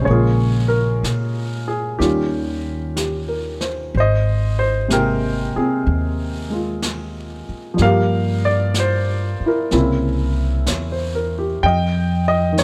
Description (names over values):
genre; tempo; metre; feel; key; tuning
jazz ballad; 62 BPM; 4/4; swing 67% on 8ths; unclear; A4 = 441 Hz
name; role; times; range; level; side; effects
warm baby grand piano; accompaniment; 0.0-12.6 s; C3 to G5; -22 LUFS; equal; none
upright bass; bass; 0.0-12.6 s; Ab1 to Bb2; -23 LUFS; equal; none
jazz brush drum kit; drums; 0.1-12.6 s; brushed snare drum, hi-hat, snare drum; -32 LUFS; equal; none
room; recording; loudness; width
little or no reverb; none; -19 LUFS; mono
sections
0.0-12.6 A section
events
none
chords
0.1 Bbm7; 2.0 Eb9; 3.9 Abmaj9; 7.8 Gm7; 9.7 C7b9; 11.6 F7sus2